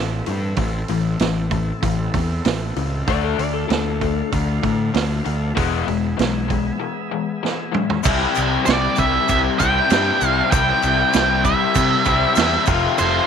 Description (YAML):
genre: classic rock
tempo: 97 BPM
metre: 4/4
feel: straight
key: unclear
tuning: A4 = 439 Hz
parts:
  - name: tonewheel organ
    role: sustained chords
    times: 0.0-13.3 s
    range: B3 to F5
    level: -32 LUFS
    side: right 1 dB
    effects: overdrive, slow rotary speaker
  - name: raw garage guitar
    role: riff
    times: 0.0-13.3 s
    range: F2 to F4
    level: -22 LUFS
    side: left 12 dB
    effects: overdrive
  - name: fuzz picked electric bass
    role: bass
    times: 0.0-13.2 s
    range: E1 to C3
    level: -23 LUFS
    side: right 1 dB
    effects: overdrive
  - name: vintage drum kit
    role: drums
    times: 0.3-13.1 s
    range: crash cymbal, hi-hat, kick drum, snare drum, toms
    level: -22 LUFS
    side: right 5 dB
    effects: none
  - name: lightly driven lead guitar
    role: second line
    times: 3.1-4.3 s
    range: A4 to D5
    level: -27 LUFS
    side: left 13 dB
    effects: none
  - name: egg shaker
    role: percussion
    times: 8.0-13.1 s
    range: none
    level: -33 LUFS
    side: left 18 dB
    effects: none
  - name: octave-fuzz lead guitar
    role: melody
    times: 8.7-13.3 s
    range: C5 to G5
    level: -19 LUFS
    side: right 5 dB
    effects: distortion, slapback echo
room: light reverb, small room ambience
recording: 1960s-style stereo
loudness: -17 LUFS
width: side -7 dB against mid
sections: 0.0-8.1 A section; 8.1-13.3 B section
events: break 6.8-8.1; drum fill 7.4-8.1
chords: 0.0 Am; 3.1 Dm; 5.6 E; 8.1 C; 12.7 F